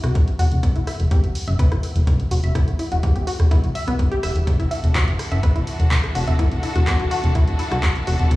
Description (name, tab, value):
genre	melodic techno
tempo	125 BPM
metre	4/4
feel	straight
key	unclear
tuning	A4 = 440 Hz
part	tight sequenced synth	arpeggios	0.0-8.2 s	B3 to E5	-28 LUFS	left 1 dB	chorus, cassette tape, sidechain pumping, dub echo
part	fat analog bass	bass	0.0-8.4 s	E1 to E2	-20 LUFS	equal	sidechain pumping
part	punchy analog drum machine	drums	0.0-8.4 s	handclaps, hi-hat, rim click	-30 LUFS	equal	none
part	electronic kick drum	drums	0.2-8.4 s	none	-20 LUFS	equal	none
part	rich studio string section	sustained chords	4.5-8.4 s	E3 to A4	-29 LUFS	equal	sidechain pumping
room	little or no reverb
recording	played on a big sound system in a bare room, large studio reverb, small room reverb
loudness	-17 LUFS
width	side -18 dB against mid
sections	0.0-8.4 A section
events	none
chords	0.0 N.C.; 4.5 D/E